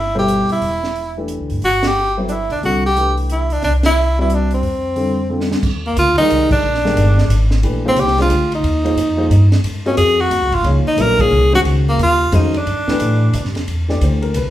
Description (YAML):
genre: modal jazz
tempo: 179 BPM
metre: 3/4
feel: swing 63% on 8ths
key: C major, Bb mixolydian from 5.6 s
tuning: A4 = 441 Hz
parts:
  - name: warm tenor saxophone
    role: melody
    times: 0.0-13.6 s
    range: Bb3 to Bb4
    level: -16 LUFS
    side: equal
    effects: none
  - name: upright bass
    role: bass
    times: 0.0-14.5 s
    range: E1 to B2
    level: -17 LUFS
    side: equal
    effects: none
  - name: dark upright piano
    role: accompaniment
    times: 0.2-14.5 s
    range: B2 to Eb5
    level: -22 LUFS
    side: left 1 dB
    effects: none
  - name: compact cocktail drum kit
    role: drums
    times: 0.3-14.4 s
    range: crash cymbal, hi-hat, kick drum, ride cymbal, snare drum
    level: -25 LUFS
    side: right 1 dB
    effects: none
room: moderate large studio reverb, RT60 0.8 s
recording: band playing live in one room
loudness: -13 LUFS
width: side -13 dB against mid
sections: 0.0-5.6 A section; 5.6-13.7 B section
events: band accent 1.8, 3.8, 6.5, 11.2; drum fill 5.3-5.6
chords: 0.0 Cmaj9; 4.6 F69; 5.6 Bb9sus4; 9.6 Ab9sus4; 12.7 G69; 13.7 Cmaj9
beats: 0.28 | 0.62 0.95 1.29 | 1.62 1.96 2.29 | 2.62 2.96 3.29 | 3.63 3.96 4.30 | 4.63 4.97 5.30 | 5.63 5.97 6.30 | 6.64 6.97 7.31 | 7.64 7.97 8.31 | 8.64 8.98 9.31 | 9.65 9.98 10.32 | 10.65 10.99 11.33 | 11.66 12.00 12.33 | 12.67 13.00 13.34 | 13.68 14.01 14.35